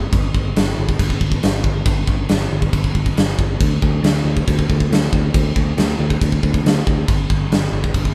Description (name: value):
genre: heavy metal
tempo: 138 BPM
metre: 4/4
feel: straight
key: unclear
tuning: A4 = 442 Hz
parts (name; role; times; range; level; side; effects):
- picked electric bass; bass; 0.0-8.1 s; G1 to D2; -21 LUFS; equal; none
- big rock drum kit; drums; 0.1-8.1 s; crash cymbal, kick drum, snare drum; -20 LUFS; equal; none
room: light reverb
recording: band playing live in one room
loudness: -18 LUFS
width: mono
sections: 0.0-8.1 A section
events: none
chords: none